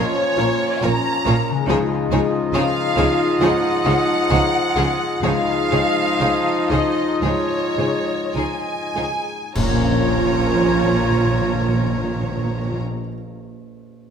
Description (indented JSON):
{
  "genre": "cinematic, emotional film score for orchestra",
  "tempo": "49-71 BPM",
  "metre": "4/4",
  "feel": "rubato",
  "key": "Bb minor",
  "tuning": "A4 = 439 Hz",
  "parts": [
    { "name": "rich studio violin section", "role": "melody", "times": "0.0-12.8 s", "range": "Db5 to Bb5", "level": "-26 LUFS", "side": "left 3 dB", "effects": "none" },
    { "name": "bright small flute group", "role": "second line", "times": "0.0-12.8 s", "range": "Db5 to Bb5", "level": "-26 LUFS", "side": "right 1 dB", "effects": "none" },
    { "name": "rich studio violin section", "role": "second line", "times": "0.0-12.8 s", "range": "Ab4 to Db5", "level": "-30 LUFS", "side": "left 3 dB", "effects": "none" },
    { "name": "warm clarinet", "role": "second line", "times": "0.0-12.8 s", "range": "F4", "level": "-26 LUFS", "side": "equal", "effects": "none" },
    { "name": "warm oboe", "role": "second line", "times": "0.0-12.8 s", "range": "Db5 to Eb5", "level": "-29 LUFS", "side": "right 2 dB", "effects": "none" },
    { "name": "dark studio viola section", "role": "accompaniment", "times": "0.0-12.8 s", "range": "F3 to F4", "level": "-27 LUFS", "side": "right 4 dB", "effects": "none" },
    { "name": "felt-muted upright piano", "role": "accompaniment", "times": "0.0-14.1 s", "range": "Bb1 to Db5", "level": "-27 LUFS", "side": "left 5 dB", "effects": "none" },
    { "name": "warm French horn section", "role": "sustained chords", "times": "0.0-12.8 s", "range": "F3 to Eb4", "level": "-26 LUFS", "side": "left 3 dB", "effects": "none" },
    { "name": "clear studio cello section", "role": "bass", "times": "0.0-12.8 s", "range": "Bb2 to Db3", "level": "-27 LUFS", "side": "right 3 dB", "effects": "none" },
    { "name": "warm studio double bass section", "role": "bass", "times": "0.0-12.8 s", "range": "Bb1 to Db2", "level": "-26 LUFS", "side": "right 4 dB", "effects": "none" },
    { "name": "concert harp", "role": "arpeggios", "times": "1.5-13.5 s", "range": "Bb2 to Db5", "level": "-29 LUFS", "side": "left 7 dB", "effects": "none" },
    { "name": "clash cymbals and concert bass drum", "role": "percussion", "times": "9.6-11.9 s", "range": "none", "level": "-27 LUFS", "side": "equal", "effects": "none" },
    { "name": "timpani", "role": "percussion", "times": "9.6-12.8 s", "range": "Bb2", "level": "-25 LUFS", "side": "right 1 dB", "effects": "none" }
  ],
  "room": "wet scoring stage reverb, RT60 1.6 s",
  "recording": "none",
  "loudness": "-17 LUFS",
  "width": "side -7 dB against mid",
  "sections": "0.0-9.6 A section; 9.6-14.1 B section",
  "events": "slowing down 0.0-9.6; band accent 9.6-10.8",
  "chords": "0.0 Bbm; 1.7 Dbadd9; 9.6 Bbm"
}